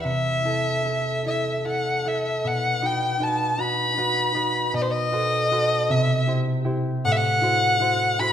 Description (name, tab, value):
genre	classical, romantic duo for violin and harp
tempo	52 BPM (dotted quarters)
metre	6/8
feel	rubato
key	unclear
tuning	A4 = 435 Hz
part	dark violin	melody	0.0-8.3 s	C5 to B5	-22 LUFS	left 1 dB	none
part	concert harp	accompaniment	0.0-8.3 s	A2 to C5	-25 LUFS	right 1 dB	none
room	moderate scoring stage reverb, RT60 1.6 s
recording	minimal, uncompressed stereo recording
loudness	-20 LUFS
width	side -9 dB against mid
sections	0.0-8.3 A section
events	none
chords	0.0 Am/C; 2.4 B; 4.7 B7b9; 5.9 C; 7.0 F#m7b5/A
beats	| 0.04 1.26 | 2.45 3.60 | 4.75 5.90 | 7.05 8.20